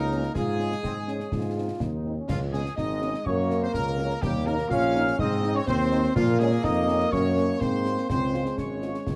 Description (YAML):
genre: military-style march for wind band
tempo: 124 BPM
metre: 2/4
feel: straight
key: Db major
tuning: A4 = 440 Hz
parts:
  - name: bright trumpet section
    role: melody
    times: 0.0-9.2 s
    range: F4 to F5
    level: -36 LUFS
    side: equal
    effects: none
  - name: bright flute section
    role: second line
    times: 0.0-9.2 s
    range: F5 to F6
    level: -38 LUFS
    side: equal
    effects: none
  - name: mellow euphonium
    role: second line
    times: 0.0-9.2 s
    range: F3 to F4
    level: -34 LUFS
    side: equal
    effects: none
  - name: mellow woodwind section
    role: second line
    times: 0.0-9.2 s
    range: F4 to F5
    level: -38 LUFS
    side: equal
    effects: none
  - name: mellow trombone section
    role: sustained chords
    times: 0.0-9.2 s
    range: Ab3 to F4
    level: -33 LUFS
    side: equal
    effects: none
  - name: warm tuba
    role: bass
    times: 0.0-9.2 s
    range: Ab1 to Bb2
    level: -30 LUFS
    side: equal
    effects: none
  - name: dark French horn section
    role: accompaniment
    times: 0.1-8.9 s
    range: F3 to F4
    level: -36 LUFS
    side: equal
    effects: none
  - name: concert snare drum, clash cymbals and concert bass drum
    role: drums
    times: 0.1-9.2 s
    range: none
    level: -35 LUFS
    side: equal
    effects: none
room: light reverb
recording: dark, warm production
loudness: -26 LUFS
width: mono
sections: 0.0-9.2 A section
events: none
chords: 0.4 Db/Ab; 1.3 Ab; 2.3 Db5; 3.3 Gb; 4.2 Eb5; 5.2 Ab; 6.2 Bbm; 7.1 Gb; 7.6 Ab13; 8.1 Db